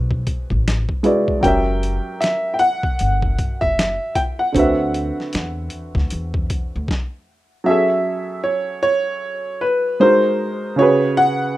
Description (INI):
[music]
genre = R&B, neo-soul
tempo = 77 BPM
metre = 4/4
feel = swing 62% on 16ths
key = unclear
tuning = A4 = 440 Hz
[part]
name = warm upright piano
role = accompaniment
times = 0.0-11.6 s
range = C#3 to E5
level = -18 LUFS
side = right 1 dB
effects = plate reverb
[part]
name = upright bass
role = bass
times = 0.0-6.9 s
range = F#1 to E2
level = -22 LUFS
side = equal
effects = none
[part]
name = boom bap sampler-style drum kit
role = drums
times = 0.1-7.1 s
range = finger snaps, hi-hat, kick drum, snare drum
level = -22 LUFS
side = equal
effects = none
[part]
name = clear grand piano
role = melody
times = 1.4-11.6 s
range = B4 to G5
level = -19 LUFS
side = equal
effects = none
[sound]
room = moderate studio reverb, RT60 0.6 s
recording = rough home demo mix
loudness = -16 LUFS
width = side -15 dB against mid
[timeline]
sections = 0.0-7.7 A section; 7.7-11.6 B section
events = stop 6.9-7.7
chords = 0.0 G#7alt; 1.4 F#7b9; 4.5 D13; 7.7 F#m9; 10.0 G#9; 10.8 C#7sus4